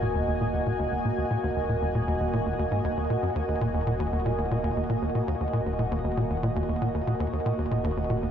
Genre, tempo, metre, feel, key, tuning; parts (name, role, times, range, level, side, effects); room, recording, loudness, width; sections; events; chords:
ambient; 117 BPM; 4/4; straight; Eb minor; A4 = 439 Hz
sweeping resonant pad; sustained chords; 0.0-8.3 s; Bb3 to Ab5; -28 LUFS; right 1 dB; chorus, shimmer reverb
tight sequencer bass; riff; 0.0-8.3 s; Eb2 to Bb2; -28 LUFS; left 1 dB; wide subtle chorus, ping-pong delay
fat analog bass; bass; 0.0-8.3 s; Eb1; -36 LUFS; equal
wet huge ambient reverb, RT60 9.0 s; dreamy mix soaked in reverb; -25 LUFS; side -8 dB against mid
0.0-8.3 A section
0.0 Ebm